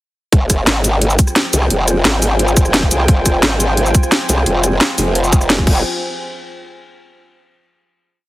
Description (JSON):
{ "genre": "dark technical drum and bass", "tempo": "174 BPM", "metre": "4/4", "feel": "straight", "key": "F minor", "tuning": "A4 = 440 Hz", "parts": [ { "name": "dark analog pad", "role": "sustained chords", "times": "1.1-5.8 s", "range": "F4 to Ab5", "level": "-22 LUFS", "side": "equal", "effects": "chorus, vintage 12-bit sampler grit, sidechain pumping" }, { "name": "growl bass", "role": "bass", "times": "0.3-5.8 s", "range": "F1 to C2", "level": "-15 LUFS", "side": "equal", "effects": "chorus, sidechain pumping" }, { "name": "drum and bass drum kit", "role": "drums", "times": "0.3-5.7 s", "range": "crash cymbal, hi-hat, rim click, shaker, snare drum", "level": "-16 LUFS", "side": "equal", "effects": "overdrive" }, { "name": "electronic kick drum", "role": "drums", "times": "0.3-5.7 s", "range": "none", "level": "-12 LUFS", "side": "equal", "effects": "overdrive" } ], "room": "light reverb", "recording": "heavily compressed radio sound", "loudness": "-12 LUFS", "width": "side -17 dB against mid", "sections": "0.3-5.8 drop; 5.8-7.2 final hit", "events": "drop 0.3-5.8", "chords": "0.3 Fmadd9; 5.8 N.C." }